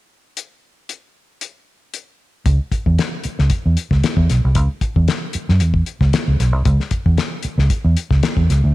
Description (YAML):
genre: funk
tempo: 114 BPM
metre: 4/4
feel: straight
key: unclear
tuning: A4 = 440 Hz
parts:
  - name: cloth-damped thuddy drum kit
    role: drums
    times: 0.4-8.6 s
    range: hi-hat, kick drum, snare drum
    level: -20 LUFS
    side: left 2 dB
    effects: none
  - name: vintage muted fingered electric bass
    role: bass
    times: 2.5-8.7 s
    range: B1 to F#2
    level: -14 LUFS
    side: equal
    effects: none
room: light reverb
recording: 1960s-style stereo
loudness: -15 LUFS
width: side -17 dB against mid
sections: 0.4-2.5 A section; 2.5-8.7 B section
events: none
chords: none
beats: | 0.37 0.89 1.41 1.94 | 2.46 2.99 3.51 4.03 | 4.56 5.08 5.61 6.13 | 6.66 7.18 7.71 8.23